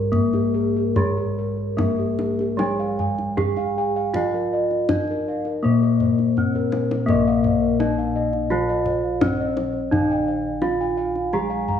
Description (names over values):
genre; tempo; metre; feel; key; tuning
Javanese gamelan; 72-85 BPM; 4/4; straight; Bb slendro; A4 = 440 Hz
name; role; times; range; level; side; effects
gamelan-type bronze metallophone; melody; 0.0-11.8 s; Ab3-45c to Ab4-45c; -23 LUFS; left 2 dB; none
gamelan-type bronze metallophone; accompaniment; 0.0-11.8 s; Eb3-35c to Bb3; -28 LUFS; left 4 dB; none
gamelan-type bronze metallophone; arpeggios; 0.0-11.8 s; Ab4-45c to Ab5-45c; -29 LUFS; right 4 dB; none
gamelan-type bossed gongs; bass; 0.0-11.8 s; Bb1 to Bb4; -27 LUFS; right 1 dB; none
kendang; percussion; 0.1-11.8 s; none; -26 LUFS; left 1 dB; none
gamelan-type bossed gongs; arpeggios; 0.3-11.8 s; Ab4-45c to Bb5; -28 LUFS; left 3 dB; none
room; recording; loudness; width
moderate recital hall reverb, RT60 1.4 s; worn, warbling old tape, cassette tape, warbly pitch drift, small room ambience; -19 LUFS; side -8 dB against mid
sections
0.0-7.1 A section; 7.1-11.8 B section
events
drum fill 6.6-7.1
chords
none